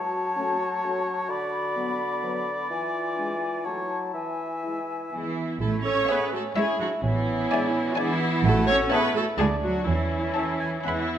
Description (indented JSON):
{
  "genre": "cinematic",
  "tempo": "127 BPM",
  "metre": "3/4",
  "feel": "straight",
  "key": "A major",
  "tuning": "A4 = 439 Hz",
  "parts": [
    { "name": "small flute group", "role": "second line", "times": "0.0-10.9 s", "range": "E5 to B5", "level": "-33 LUFS", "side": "left 4 dB", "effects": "none" },
    { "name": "warm clarinet", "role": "second line", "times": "0.0-11.2 s", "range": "B3 to A4", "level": "-33 LUFS", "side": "left 2 dB", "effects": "none" },
    { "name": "warm oboe", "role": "second line", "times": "0.0-11.2 s", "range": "C#5 to G#5", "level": "-33 LUFS", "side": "equal", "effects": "none" },
    { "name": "warm bassoon", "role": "accompaniment", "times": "0.0-11.1 s", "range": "D3 to F#4", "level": "-31 LUFS", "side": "right 1 dB", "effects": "none" },
    { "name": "warm French horn section", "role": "sustained chords", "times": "0.4-11.0 s", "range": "F#3 to E4", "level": "-37 LUFS", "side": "left 4 dB", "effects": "none" },
    { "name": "warm chamber viola section", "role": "accompaniment", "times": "5.1-11.2 s", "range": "E4 to C#5", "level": "-27 LUFS", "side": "right 2 dB", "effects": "none" },
    { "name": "rich symphonic cello section", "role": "bass", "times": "5.1-11.2 s", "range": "E3 to C#4", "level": "-29 LUFS", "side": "right 2 dB", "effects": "none" },
    { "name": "rich chamber double bass section", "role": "bass", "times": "5.6-11.2 s", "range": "A1 to E2", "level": "-27 LUFS", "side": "right 3 dB", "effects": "none" },
    { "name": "rich chamber violin section", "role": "melody", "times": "6.1-11.2 s", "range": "E5 to B5", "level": "-35 LUFS", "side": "left 3 dB", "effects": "none" },
    { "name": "warm chamber violin section", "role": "second line", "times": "6.1-11.2 s", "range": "C#5 to A5", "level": "-36 LUFS", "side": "left 4 dB", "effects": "none" }
  ],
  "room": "wet recital hall reverb, RT60 1.8 s",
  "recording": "none",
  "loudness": "-23 LUFS",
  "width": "side -10 dB against mid",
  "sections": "0.0-5.6 A section; 5.6-11.2 B section",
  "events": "none",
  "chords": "0.0 F#m; 1.3 Bm/D; 2.7 E7b9; 3.7 F#m7; 4.1 E; 5.6 A; 7.0 E7/A; 8.4 A; 9.4 D; 9.9 A/E"
}